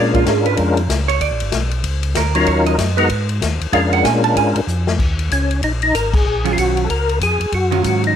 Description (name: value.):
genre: soul jazz organ trio.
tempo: 190 BPM.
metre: 4/4.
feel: swing 61% on 8ths.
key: Eb minor.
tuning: A4 = 440 Hz.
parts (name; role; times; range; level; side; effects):
percussive tonewheel organ; melody; 0.0-8.2 s; Gb3 to Bb4; -18 LUFS; left 3 dB; slow rotary speaker, chorus vibrato.
vintage hollow-body jazz guitar; accompaniment; 0.0-8.1 s; Eb3 to A5; -20 LUFS; right 14 dB; none.
mellow tonewheel organ; bass; 0.0-8.1 s; Ab1 to Bb2; -19 LUFS; equal; slow rotary speaker, transformer saturation.
swinging big-band drum kit; drums; 0.1-8.1 s; crash cymbal, hi-hat, kick drum, ride cymbal, snare drum; -22 LUFS; left 3 dB; none.
room: light reverb, studio reverb.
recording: 1960s-style stereo.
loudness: -14 LUFS.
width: side -9 dB against mid.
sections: 0.0-5.0 A section; 5.0-8.2 B section.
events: hollow-body jazz guitar solo 0.0-5.0; drum fill 4.7-5.0; band accent 6.1.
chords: 0.0 Bb7#9; 2.5 Ebm9; 3.1 Ab5; 3.7 Bb7#9; 5.0 Ebm9.